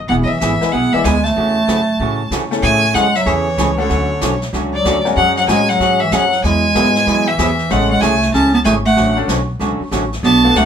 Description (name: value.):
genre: country, western swing.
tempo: 189 BPM.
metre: 4/4.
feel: swing 64% on 8ths.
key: A major.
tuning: A4 = 440 Hz.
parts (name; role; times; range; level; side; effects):
upright bass; bass; 0.0-10.7 s; E1 to C#3; -21 LUFS; left 1 dB; none.
clear fiddle; melody; 0.1-10.7 s; C#5 to A5; -17 LUFS; left 2 dB; none.
mellow clarinet; second line; 0.1-10.7 s; D3 to C#4; -17 LUFS; right 2 dB; none.
archtop guitar, miked and amplified; accompaniment; 0.1-10.7 s; B2 to G#4; -21 LUFS; right 3 dB; none.
jazz brush drum kit; drums; 0.1-10.7 s; brushed snare drum, hi-hat, snare drum; -25 LUFS; left 2 dB; none.
tack piano; accompaniment; 0.6-10.5 s; F#3 to D5; -21 LUFS; left 4 dB; none.
room: wet small room reverb, RT60 0.5 s.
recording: band playing live in one room.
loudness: -12 LUFS.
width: side -8 dB against mid.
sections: 0.0-2.6 A section; 2.6-10.7 B section.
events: none.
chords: 0.1 E; 1.4 A6; 2.6 Amaj7; 3.9 Dmaj7; 5.2 F#sus2; 6.4 Eadd9; 7.7 Amaj7; 9.0 Dmaj7/A.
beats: | 0.09 0.41 0.73 1.04 | 1.36 1.68 2.00 2.31 | 2.63 2.95 3.26 3.58 | 3.90 4.21 4.53 4.85 | 5.17 5.48 5.80 6.12 | 6.43 6.75 7.07 7.38 | 7.70 8.02 8.33 8.65 | 8.97 9.28 9.60 9.92 | 10.23 10.55.